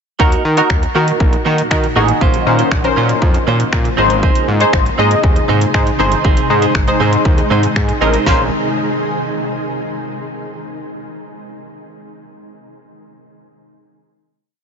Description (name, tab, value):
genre	dance-pop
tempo	119 BPM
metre	4/4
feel	straight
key	Bb minor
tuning	A4 = 440 Hz
part	funky polysynth comp	accompaniment	0.2-8.5 s	Db4 to Eb5	-17 LUFS	left 1 dB	chorus, sidechain pumping
part	granular cloud pad	sustained chords	1.1-8.5 s	Bb2 to C5	-21 LUFS	equal	built-in reverb, ensemble chorus, sidechain pumping
part	direct-recorded clean electric guitar	riff	0.2-8.4 s	Bb3 to C5	-22 LUFS	right 7 dB	wide subtle chorus
part	fat analog bass	bass	0.2-8.5 s	G1 to Eb3	-17 LUFS	equal	sidechain pumping
part	pop drum kit	drums	0.2-8.4 s	finger snaps, hi-hat, kick drum, snare drum	-17 LUFS	equal	none
room	moderate huge ambient reverb, RT60 8.3 s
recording	dreamy mix soaked in reverb, nothing above 7.8 kHz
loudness	-12 LUFS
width	side -6 dB against mid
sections	0.2-8.3 bridge; 8.3-10.3 final chord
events	none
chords	0.2 Ebm; 2.2 Bbmadd9; 4.0 Ab; 8.3 Bbmadd9